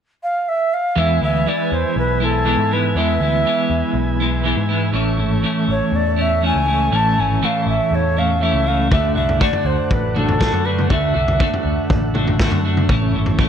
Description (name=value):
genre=psychedelic rock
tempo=121 BPM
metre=4/4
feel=straight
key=unclear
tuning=A4 = 440 Hz
part: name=mellow jazz flute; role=melody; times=0.2-11.9 s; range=A4 to A5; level=-20 LUFS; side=right 1 dB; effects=analog delay
part: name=overdriven combo organ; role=sustained chords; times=1.0-13.5 s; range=A4 to G#5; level=-29 LUFS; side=right 2 dB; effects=none
part: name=clean electric guitar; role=riff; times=1.0-13.5 s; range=A2 to F#4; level=-20 LUFS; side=equal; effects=tremolo, double-tracked left and right
part: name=picked electric bass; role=bass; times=1.0-13.4 s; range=G#1 to G#2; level=-21 LUFS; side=equal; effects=none
part: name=vintage drum kit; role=drums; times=8.9-13.5 s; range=kick drum, snare drum, toms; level=-20 LUFS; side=left 1 dB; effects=none
room=light reverb, studio reverb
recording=none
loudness=-15 LUFS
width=side -8 dB against mid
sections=1.0-13.5 A section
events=none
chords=0.0 N.C.; 1.0 E; 4.9 A; 8.9 D; 12.9 A